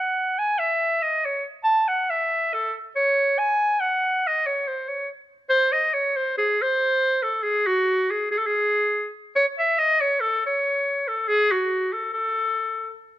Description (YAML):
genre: balkan folk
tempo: free time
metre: none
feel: none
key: F# dorian sharp4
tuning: A4 = 444 Hz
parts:
  - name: bright clarinet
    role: solo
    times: 0.0-13.0 s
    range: F#4 to A5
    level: -20 LUFS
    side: equal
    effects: none
room: light reverb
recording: close, detailed microphones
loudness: -20 LUFS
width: side -13 dB against mid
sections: 0.0-5.5 A section; 5.5-13.2 B section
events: clarinet solo 0.0-5.5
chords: none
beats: free time